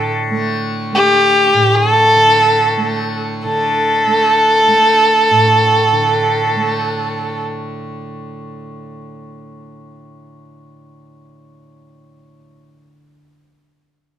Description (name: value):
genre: indian classical, Hindustani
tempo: free time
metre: none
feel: none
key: unclear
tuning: A4 = 442 Hz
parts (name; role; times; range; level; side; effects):
- dark violin; melody; 0.0-7.4 s; G4 to A4; -12 LUFS; equal; none
- tanpura; drone; 0.0-13.1 s; A2 to A3; -21 LUFS; right 1 dB; none
room: light reverb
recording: close, detailed microphones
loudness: -11 LUFS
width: side -10 dB against mid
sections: 0.0-3.4 A section; 3.4-6.7 B section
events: none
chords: none